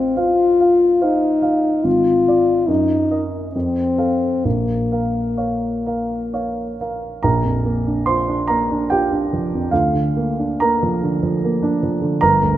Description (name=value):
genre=classical, romantic duo for French horn and grand piano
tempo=63-76 BPM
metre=3/4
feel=rubato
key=Bb minor, Bb major from 7.2 s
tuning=A4 = 440 Hz
part: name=mellow French horn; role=melody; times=0.0-6.8 s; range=Bb3 to F4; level=-17 LUFS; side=left 2 dB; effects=none
part: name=dark baby grand piano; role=accompaniment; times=0.0-12.6 s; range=G1 to C6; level=-18 LUFS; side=right 2 dB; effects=none
room=moderate scoring stage reverb, RT60 1.6 s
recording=close, detailed microphones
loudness=-16 LUFS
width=side -13 dB against mid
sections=0.0-7.2 A section; 7.2-12.6 B section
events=none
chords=0.0 F/A; 1.9 Ddim/Ab; 2.7 Ebm/Gb; 3.5 F; 4.4 Bbm; 7.2 Bb; 9.7 Bb/D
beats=0.18 1.02 | 1.85 2.69 3.54 | 4.45 5.39 6.34 | 7.24 8.08 8.92 | 9.73 10.61 11.43 | 12.22